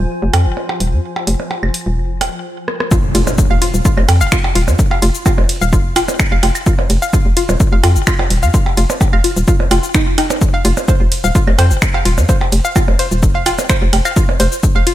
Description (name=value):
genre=minimal techno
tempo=128 BPM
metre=4/4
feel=straight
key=F minor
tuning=A4 = 440 Hz
part: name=hollow knocking FM bass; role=bass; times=0.0-14.8 s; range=Eb1 to F2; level=-14 LUFS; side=equal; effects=tube saturation, sidechain pumping
part: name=granular cloud pad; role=texture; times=0.0-2.4 s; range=F4 to Ab5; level=-30 LUFS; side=left 1 dB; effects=built-in reverb, sidechain pumping
part: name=swarming drone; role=texture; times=0.0-2.4 s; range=F3 to F4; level=-30 LUFS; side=left 3 dB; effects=built-in reverb, sidechain pumping
part: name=punchy analog drum machine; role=drums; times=0.3-14.9 s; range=finger snaps, hi-hat, ride cymbal, rim click, shaker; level=-21 LUFS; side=equal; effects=none
part: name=percussion blips and claves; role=percussion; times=0.3-14.4 s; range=none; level=-21 LUFS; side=right 3 dB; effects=overdrive, ping-pong delay
part: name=hollow square pluck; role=riff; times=2.9-14.9 s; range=Eb4 to F5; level=-20 LUFS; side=left 1 dB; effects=chorus, cassette tape, sidechain pumping, tape echo
part: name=electronic kick drum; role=drums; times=2.9-14.7 s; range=none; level=-14 LUFS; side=equal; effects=none
part: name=impact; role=sound effects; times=2.9-4.8 s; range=none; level=-23 LUFS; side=equal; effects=none
room=little or no reverb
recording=none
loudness=-11 LUFS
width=side -13 dB against mid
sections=0.0-2.9 A section; 2.9-14.9 B section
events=drum fill 2.7; drop 2.9-14.9; impact 2.9-4.8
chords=0.0 Fm; 2.9 N.C.